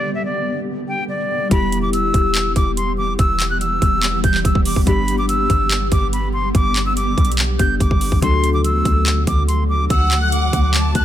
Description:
hip hop, trap; 143 BPM; 4/4; half-time; E minor; A4 = 439 Hz
breathy bright concert flute; melody; 0.0-11.0 s; D5 to G6; -21 LUFS; equal; low-pass filter
glassy digital keys; accompaniment; 0.0-11.0 s; F#3 to A4; -25 LUFS; left 4 dB; chorus, low-pass filter
granular cloud pad; sustained chords; 0.0-11.0 s; D3 to G4; -25 LUFS; equal; built-in reverb, low-pass filter
clean 808-style bass; bass; 1.5-11.0 s; E1 to D2; -20 LUFS; equal
trap drum kit; drums; 1.5-11.0 s; handclaps, hi-hat, kick drum; -18 LUFS; equal
dark studio violin section; second line; 9.9-11.0 s; F#5 to A5; -24 LUFS; left 1 dB
little or no reverb; -15 LUFS; side -11 dB against mid
0.0-1.5 A section; 1.5-11.0 B section
break 0.0-1.5; filter sweep 0.0-1.5
0.0 G; 1.5 Em; 4.9 G; 8.2 D
0.25 0.67 1.09 | 1.51 1.93 2.35 2.77 | 3.19 3.61 4.03 4.45 | 4.87 5.29 5.71 6.13 | 6.55 6.96 7.38 7.80 | 8.22 8.64 9.06 9.48 | 9.90 10.32 10.74

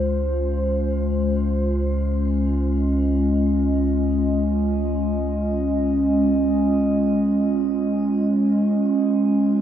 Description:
ambient; free time; Db major; A4 = 440 Hz
warbly tape-like pad; sustained chords; 0.0-9.6 s; Ab3 to Eb5; -19 LUFS; right 1 dB; chorus, built-in reverb, shimmer reverb
deep rumbling drone; bass; 0.0-9.6 s; Db2; -25 LUFS; equal; built-in reverb
wet lush hall reverb, RT60 3.1 s; dark, warm production; -18 LUFS; side -10 dB against mid
0.0-9.6 A section
filter sweep on ambient pad 0.0-9.6
0.0 Dbmaj7
free time

